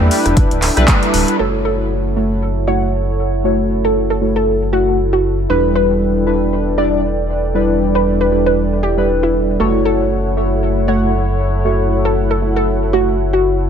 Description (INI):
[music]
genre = deep house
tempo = 117 BPM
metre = 4/4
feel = swing 57% on 16ths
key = F# phrygian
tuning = A4 = 441 Hz
[part]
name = warm analog pad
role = sustained chords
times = 0.0-13.7 s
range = D4 to G5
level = -25 LUFS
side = left 2 dB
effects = lush chorus, sidechain pumping
[part]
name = chorused polysynth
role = stabs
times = 0.0-13.2 s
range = G3 to F#5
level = -18 LUFS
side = equal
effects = sidechain pumping, ping-pong delay
[part]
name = round analog bass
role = bass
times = 0.0-13.7 s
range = D1 to E2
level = -19 LUFS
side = equal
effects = sidechain pumping
[part]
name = congas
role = percussion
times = 0.0-1.0 s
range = none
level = -24 LUFS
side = right 7 dB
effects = sidechain pumping on perc
[part]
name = warbly tape-like pad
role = texture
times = 0.0-13.7 s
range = E4 to D5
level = -24 LUFS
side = right 4 dB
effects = chorus, built-in reverb, sidechain pumping
[part]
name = deep house drum kit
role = drums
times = 0.1-1.4 s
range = handclaps, hi-hat, rim click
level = -20 LUFS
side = equal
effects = overdrive
[part]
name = electronic kick drum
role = drums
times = 0.4-1.0 s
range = none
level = -14 LUFS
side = equal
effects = none
[part]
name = soft round pluck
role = melody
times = 1.4-13.6 s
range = E4 to D5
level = -20 LUFS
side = equal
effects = analog chorus, dub echo
[sound]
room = light reverb, digital ambience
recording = none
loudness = -13 LUFS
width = side -8 dB against mid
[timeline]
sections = 0.0-1.4 A section; 1.4-13.7 B section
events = band accent 0.9; filter sweep on analog synth pad 1.4-13.7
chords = 0.0 Em7; 1.4 F#m7; 5.5 Em7; 9.6 F#m7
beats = 0.37 0.88 | 1.39 1.91 2.42 2.93 | 3.44 3.96 4.47 4.98 | 5.50 6.01 6.52 7.03 | 7.55 8.06 8.57 9.09 | 9.60 10.11 10.62 11.14 | 11.65 12.16 12.68 13.19